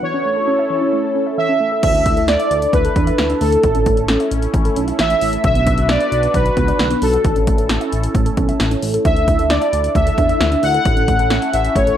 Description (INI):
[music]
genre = synth-pop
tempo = 133 BPM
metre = 4/4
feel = straight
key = A major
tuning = A4 = 440 Hz
[part]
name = analog synth brass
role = melody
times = 0.0-12.0 s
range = A4 to F#5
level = -17 LUFS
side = equal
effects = chorus
[part]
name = phased analog pad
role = sustained chords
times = 0.0-12.0 s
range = C#4 to B4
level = -23 LUFS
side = equal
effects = phaser, chorus
[part]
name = warbly dusty pluck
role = arpeggios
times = 0.0-12.0 s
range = D3 to E5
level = -23 LUFS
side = right 2 dB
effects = chorus, tape echo
[part]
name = chorused synth bass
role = bass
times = 1.8-11.9 s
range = A1 to E2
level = -20 LUFS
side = equal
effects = none
[part]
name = punchy analog drum machine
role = drums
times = 1.8-12.0 s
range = crash cymbal, hi-hat, kick drum, snare drum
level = -19 LUFS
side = equal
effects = none
[sound]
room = light reverb, digital ambience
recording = none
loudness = -14 LUFS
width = side -10 dB against mid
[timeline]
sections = 0.0-1.8 A section; 1.8-12.0 B section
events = break 0.0-1.8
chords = 0.0 A; 1.8 Dsus2; 3.6 A; 5.4 Bm; 7.2 A; 9.1 Dsus2; 10.9 A